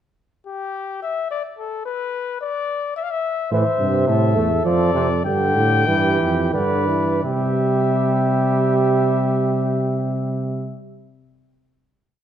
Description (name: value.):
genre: classical, imitative canzona for brass ensemble.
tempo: 82-109 BPM.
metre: 3/4.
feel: straight.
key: C major.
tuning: A4 = 438 Hz.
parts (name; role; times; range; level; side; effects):
mellow cornet; melody; 0.5-10.8 s; G4 to G5; -24 LUFS; left 6 dB; none.
mellow flugelhorn; second line; 3.5-10.7 s; G4 to C5; -25 LUFS; right 4 dB; none.
clear trombone; accompaniment; 3.5-10.8 s; C3 to A3; -22 LUFS; right 3 dB; none.
warm bass trombone; bass; 3.5-10.8 s; E2 to C3; -21 LUFS; right 2 dB; none.
room: moderate recital hall reverb, RT60 1.5 s.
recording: dark, warm production.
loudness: -18 LUFS.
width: side -10 dB against mid.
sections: 0.2-7.2 exposition; 7.2-11.6 final chord.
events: slowing down 2.7-7.2.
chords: 0.2 N.C.; 3.5 Am; 4.7 Dm/F; 5.3 G5; 6.5 G; 7.2 C.